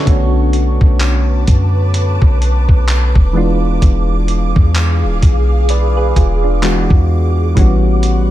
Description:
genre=contemporary R&B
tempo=64 BPM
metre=4/4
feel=swing 58% on 16ths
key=unclear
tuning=A4 = 440 Hz
part: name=soft electric-piano-like synth keys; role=accompaniment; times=0.0-8.3 s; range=D3 to D5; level=-18 LUFS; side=right 1 dB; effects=chorus
part: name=ethereal airy pad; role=sustained chords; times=0.0-8.3 s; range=G3 to D6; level=-22 LUFS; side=equal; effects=ensemble chorus, built-in reverb
part: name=clean 808-style bass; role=bass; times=0.0-8.3 s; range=D1 to F#2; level=-13 LUFS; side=equal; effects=none
part: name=dusty soul sampler-style drum kit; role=drums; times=0.1-8.3 s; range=handclaps, hi-hat, kick drum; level=-13 LUFS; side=equal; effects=none
room=digital ambience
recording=none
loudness=-10 LUFS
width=side -14 dB against mid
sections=0.0-8.3 A section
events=none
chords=0.1 Bm7; 3.4 E7b9; 6.6 E9; 7.6 A13

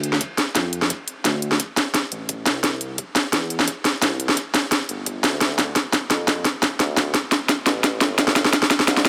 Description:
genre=liquid drum and bass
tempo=173 BPM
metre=4/4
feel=swing 53% on 16ths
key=D minor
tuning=A4 = 440 Hz
part: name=smooth synth bass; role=bass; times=0.0-9.1 s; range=G1 to F2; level=-30 LUFS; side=equal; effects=high-pass filter
part: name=drum and bass drum kit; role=drums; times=0.0-9.1 s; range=hi-hat, snare drum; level=-21 LUFS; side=equal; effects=overdrive
part: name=electronic kick drum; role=drums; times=0.2-9.0 s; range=none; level=-38 LUFS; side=equal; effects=none
room=light reverb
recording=none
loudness=-21 LUFS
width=mono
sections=0.0-9.1 A section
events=build-up 0.0-9.1; drum fill 0.0-9.1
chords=none

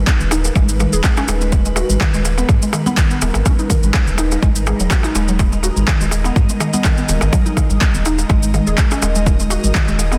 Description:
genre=afro house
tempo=124 BPM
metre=4/4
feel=swing 54% on 16ths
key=G# minor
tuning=A4 = 440 Hz
part: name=ethereal airy pad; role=sustained chords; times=0.0-10.2 s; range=G#3 to D#5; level=-29 LUFS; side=equal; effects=ensemble chorus, built-in reverb, phaser, sidechain pumping
part: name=warm sub bass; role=bass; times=0.0-10.2 s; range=D#1 to G#2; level=-21 LUFS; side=equal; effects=sidechain pumping
part: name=electronic handclaps and shaker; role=drums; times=0.1-10.2 s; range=none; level=-25 LUFS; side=equal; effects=none
part: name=electronic kick drum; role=drums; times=0.1-9.9 s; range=none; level=-18 LUFS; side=equal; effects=overdrive
part: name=darbuka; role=percussion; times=0.1-10.2 s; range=none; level=-29 LUFS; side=equal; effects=none
part: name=congas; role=percussion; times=0.2-9.7 s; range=none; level=-28 LUFS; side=equal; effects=none
part: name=mallet-like synth pluck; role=arpeggios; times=0.3-10.2 s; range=D#3 to G#4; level=-24 LUFS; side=equal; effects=ensemble chorus, sidechain pumping, dub echo
room=light reverb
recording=dense, heavily limited modern master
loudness=-16 LUFS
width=mono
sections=0.0-10.2 A section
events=none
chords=0.0 G#madd9

